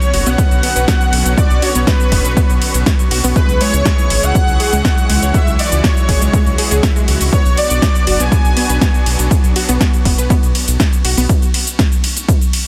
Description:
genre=progressive house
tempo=121 BPM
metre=4/4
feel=straight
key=B dorian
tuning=A4 = 445 Hz
part: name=soft supersaw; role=melody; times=0.0-9.3 s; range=B4 to G#5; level=-24 LUFS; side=equal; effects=sidechain pumping, dub echo
part: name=airy dreamy lead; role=second line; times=0.0-9.3 s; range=B4 to G#5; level=-29 LUFS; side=equal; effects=none
part: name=supersaw pad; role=sustained chords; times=0.0-11.3 s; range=D3 to G#4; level=-27 LUFS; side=equal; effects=sidechain pumping
part: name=deep house drum kit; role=drums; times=0.0-12.6 s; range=cabasa, hi-hat, ride cymbal, snare drum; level=-22 LUFS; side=equal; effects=overdrive
part: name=twinkling granular texture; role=texture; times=0.6-12.7 s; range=C#6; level=-34 LUFS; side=equal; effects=none
part: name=unison pluck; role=arpeggios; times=0.1-11.3 s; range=G#3 to E5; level=-24 LUFS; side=equal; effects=sidechain pumping, tape echo
part: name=round analog bass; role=bass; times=0.1-11.3 s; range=F#1 to C#2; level=-19 LUFS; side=equal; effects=sidechain pumping
part: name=electronic kick drum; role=drums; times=0.4-12.4 s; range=none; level=-16 LUFS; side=equal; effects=overdrive
room=light reverb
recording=dense, heavily limited modern master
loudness=-14 LUFS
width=mono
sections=0.0-12.7 A section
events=none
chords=0.0 Bmadd9; 3.4 C#m; 7.3 Bmadd9; 11.3 N.C.

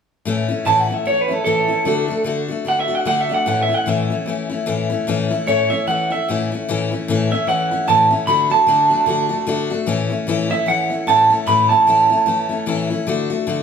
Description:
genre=rock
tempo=150 BPM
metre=4/4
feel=swing 58% on 8ths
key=A major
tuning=A4 = 442 Hz
part: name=picked steel-string acoustic guitar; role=accompaniment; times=0.3-13.6 s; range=A2 to F#4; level=-20 LUFS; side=left 4 dB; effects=none
part: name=electric guitar through a small old amp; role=melody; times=0.7-12.9 s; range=A4 to B5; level=-16 LUFS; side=right 3 dB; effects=spring reverb
room=moderate large studio reverb, RT60 0.8 s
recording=band playing live in one room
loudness=-16 LUFS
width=side -7 dB against mid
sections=0.3-6.7 A section; 6.7-13.6 B section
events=none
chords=0.3 A; 1.9 D; 3.5 A; 8.3 D; 9.9 A; 13.1 D

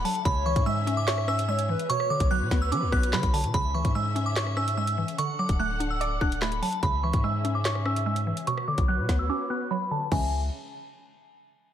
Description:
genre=hip hop, drill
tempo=146 BPM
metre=4/4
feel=half-time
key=C# phrygian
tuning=A4 = 440 Hz
part: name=glassy synth bell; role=melody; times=0.0-10.3 s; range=G#5 to F#6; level=-29 LUFS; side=right 2 dB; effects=chorus, low-pass filter
part: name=mallet-like synth pluck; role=accompaniment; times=0.0-10.3 s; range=B2 to D5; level=-32 LUFS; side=right 1 dB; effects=chorus, low-pass filter
part: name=warm symphonic string section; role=sustained chords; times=0.0-10.3 s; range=C#3 to F#5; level=-37 LUFS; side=left 3 dB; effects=low-pass filter
part: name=long sustained 808-style bass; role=bass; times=0.0-10.5 s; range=D1 to F#3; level=-29 LUFS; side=equal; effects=none
part: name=drill drum kit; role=drums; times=0.1-10.2 s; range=crash cymbal, handclaps, hi-hat, kick drum, rim click, snare drum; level=-29 LUFS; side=equal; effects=none
part: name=hollow clarinet-like synth lead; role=second line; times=0.3-2.3 s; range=B4 to E5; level=-32 LUFS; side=left 1 dB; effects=chorus, phaser, ping-pong delay
room=light reverb, digital ambience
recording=none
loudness=-24 LUFS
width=side -10 dB against mid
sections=0.0-3.5 A section; 3.5-10.1 B section; 10.1-11.7 C section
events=filter sweep 3.5-10.1; break 9.3-10.1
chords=0.3 C#m; 1.9 Bmadd9; 3.5 C#m; 5.2 D; 6.8 C#m; 8.5 Bmadd9; 10.1 C#m

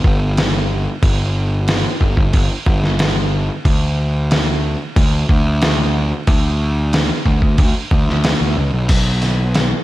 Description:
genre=classic rock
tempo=92 BPM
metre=4/4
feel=straight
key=unclear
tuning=A4 = 440 Hz
part: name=fuzz picked electric bass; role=bass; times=0.0-9.7 s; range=G1 to D2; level=-17 LUFS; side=equal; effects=overdrive
part: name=lo-fi sampler-style drum kit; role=drums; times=0.0-9.7 s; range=crash cymbal, hi-hat, kick drum, snare drum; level=-16 LUFS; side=equal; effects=none
room=light reverb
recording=vinyl crackle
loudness=-14 LUFS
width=side -16 dB against mid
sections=0.0-8.9 A section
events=break 8.6-8.9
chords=none

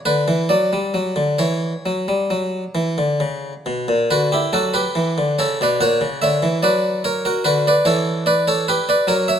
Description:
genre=classical, baroque-style suite movement for harpsichord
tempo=66-73 BPM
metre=4/4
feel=rubato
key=B minor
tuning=A4 = 440 Hz
part: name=harpsichord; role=solo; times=0.1-9.4 s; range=A#2 to F#5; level=-16 LUFS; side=equal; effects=none
room=moderate recital hall reverb, RT60 1.7 s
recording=close, detailed microphones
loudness=-16 LUFS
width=side -8 dB against mid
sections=0.0-4.1 A section; 4.1-9.4 A section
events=none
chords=0.0 E5; 0.5 F#5; 4.1 Bm/D; 5.8 F#7/A#; 7.5 Bm/D

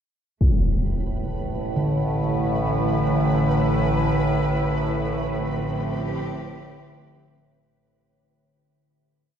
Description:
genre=dark ambient drone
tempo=66 BPM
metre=4/4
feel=straight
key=A minor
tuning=A4 = 441 Hz
part: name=rich studio cello section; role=sustained chords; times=0.4-7.7 s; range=A2 to B4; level=-32 LUFS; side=equal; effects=none
part: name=overtone-sweeping drone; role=drone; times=1.0-7.8 s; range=A1 to A2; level=-24 LUFS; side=equal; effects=chorus, built-in reverb
part: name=impact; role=percussion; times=0.4-0.6 s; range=none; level=-24 LUFS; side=equal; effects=low-pass filter on sfx
part: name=flickering grainy texture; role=texture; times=1.1-7.7 s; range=B4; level=-36 LUFS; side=right 1 dB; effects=built-in reverb
part: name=bronze singing bowl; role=arpeggios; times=1.8-7.2 s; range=D3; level=-25 LUFS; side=equal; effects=tape echo
room=wet huge ambient reverb, RT60 7.7 s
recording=dark, warm production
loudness=-20 LUFS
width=side -8 dB against mid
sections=0.4-7.7 A section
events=fade-in on cello section 0.4-7.7; fade-in on synth texture 0.4-7.7; fade-out 4.0-7.7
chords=0.4 Asus2; 4.0 F/A

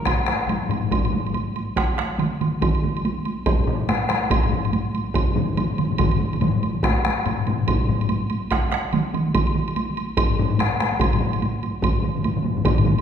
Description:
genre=japanese traditional, taiko drum ensemble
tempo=143 BPM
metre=4/4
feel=swing 60% on 16ths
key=none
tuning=none
part: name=solo taiko drums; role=percussion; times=0.1-12.8 s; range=none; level=-25 LUFS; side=right 1 dB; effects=none
part: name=taiko ensemble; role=percussion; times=0.1-13.0 s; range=none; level=-27 LUFS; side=right 1 dB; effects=none
part: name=taiko ensemble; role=percussion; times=0.1-13.0 s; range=none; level=-23 LUFS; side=left 4 dB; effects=none
part: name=woodblock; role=percussion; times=0.1-13.0 s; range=none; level=-30 LUFS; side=right 4 dB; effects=none
part: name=taiko ensemble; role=percussion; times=1.8-13.0 s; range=none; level=-25 LUFS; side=right 3 dB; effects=none
room=wet recital hall reverb, RT60 1.7 s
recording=recorded in a church or concert hall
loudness=-20 LUFS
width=side -8 dB against mid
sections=0.1-13.0 A section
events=speeding up 0.0-13.0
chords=none

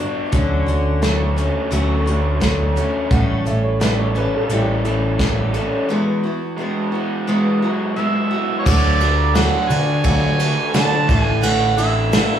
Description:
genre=folk rock and heartland rock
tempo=86 BPM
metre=4/4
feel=straight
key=unclear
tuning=A4 = 440 Hz
part: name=picked steel-string acoustic guitar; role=accompaniment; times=0.0-12.4 s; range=A2 to A4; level=-23 LUFS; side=left 2 dB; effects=slapback echo
part: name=raw garage guitar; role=riff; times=0.0-12.4 s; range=E2 to F#4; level=-22 LUFS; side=right 1 dB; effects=overdrive, slapback echo
part: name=picked electric bass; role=bass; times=0.3-12.2 s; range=A1 to D3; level=-20 LUFS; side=right 1 dB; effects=none
part: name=soft brush drum kit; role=drums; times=0.3-12.3 s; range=crash cymbal, hi-hat, kick drum, ride cymbal, snare drum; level=-20 LUFS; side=right 1 dB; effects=none
part: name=warm upright piano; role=second line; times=3.1-5.2 s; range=E4 to F#5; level=-26 LUFS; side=right 3 dB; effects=slapback echo
part: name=overdriven harmonica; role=melody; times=8.0-12.4 s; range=C#5 to A5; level=-21 LUFS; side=right 4 dB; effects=slapback echo
part: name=bright concert grand piano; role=accompaniment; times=8.7-12.4 s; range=E4 to G#5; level=-30 LUFS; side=right 3 dB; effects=none
room=light reverb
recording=live gig heard through the venue's PA, club reverb, small room ambience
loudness=-16 LUFS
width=side -9 dB against mid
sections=0.0-8.7 A section; 8.7-12.4 B section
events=none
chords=0.3 Dmaj7; 3.1 A7; 5.9 Eadd9; 8.7 D; 11.1 Asus4

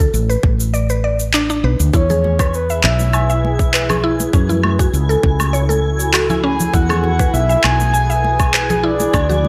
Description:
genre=organic downtempo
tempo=100 BPM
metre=4/4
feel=straight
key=E mixolydian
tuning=A4 = 440 Hz
part: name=mallet-like synth pluck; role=arpeggios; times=0.0-9.5 s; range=C#4 to G#5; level=-24 LUFS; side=equal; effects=chorus, cassette tape, delay
part: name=woody fretless electric bass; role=bass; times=0.0-9.5 s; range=A1 to F#2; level=-20 LUFS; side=equal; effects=sidechain pumping
part: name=electronic shaker, handclaps and woodblock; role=drums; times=0.0-9.4 s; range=none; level=-22 LUFS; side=equal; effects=gated reverb
part: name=electronic kick drum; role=drums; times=0.4-9.3 s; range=none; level=-18 LUFS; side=equal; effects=none
part: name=breathy flute-like synth lead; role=melody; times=1.9-9.5 s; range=B4 to G#5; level=-23 LUFS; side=equal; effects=lush chorus, cassette tape, delay
part: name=granular cloud pad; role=sustained chords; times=2.8-9.5 s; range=D4 to F#5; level=-27 LUFS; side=equal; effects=built-in reverb, lush chorus, sidechain pumping
part: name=twinkling granular texture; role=texture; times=2.3-9.5 s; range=G#5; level=-32 LUFS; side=equal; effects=built-in reverb, ensemble chorus
part: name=congas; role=percussion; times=2.1-9.5 s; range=none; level=-27 LUFS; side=equal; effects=none
room=moderate plate reverb, RT60 1.5 s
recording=bright 1980s-style digital production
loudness=-16 LUFS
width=mono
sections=0.0-9.5 A section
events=none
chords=0.0 D5; 1.9 E; 4.3 F#m7; 6.7 E

